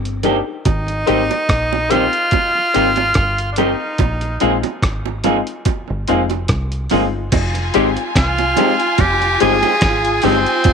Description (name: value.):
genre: lovers rock reggae.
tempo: 72 BPM.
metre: 4/4.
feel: swing 55% on 16ths.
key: unclear.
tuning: A4 = 440 Hz.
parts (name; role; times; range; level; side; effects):
deep dub fingered electric bass; bass; 0.0-10.7 s; F1 to C2; -22 LUFS; equal; none.
dusty soul sampler-style drum kit; drums; 0.1-10.7 s; crash cymbal, hi-hat, kick drum, rim click, snare drum; -19 LUFS; equal; none.
clear concert grand piano; accompaniment; 0.2-10.5 s; Ab3 to G4; -19 LUFS; left 13 dB; none.
electric guitar through a small old amp; stabs; 0.2-10.4 s; Eb3 to Ab4; -23 LUFS; right 14 dB; none.
bongos; percussion; 0.2-10.7 s; none; -25 LUFS; right 15 dB; tape echo.
edgy tenor saxophone; melody; 0.7-10.7 s; C4 to Ab4; -17 LUFS; right 1 dB; tape echo.
warm studio string section; second line; 7.3-10.7 s; F4 to Ab5; -20 LUFS; equal; none.
room: light reverb, studio ambience.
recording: 1960s-style stereo with parts hard left and right.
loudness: -14 LUFS.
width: side -6 dB against mid.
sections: 0.0-7.3 A section; 7.3-10.7 B section.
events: none.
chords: 0.0 Cm7; 0.7 Abmaj7; 4.0 Fm9.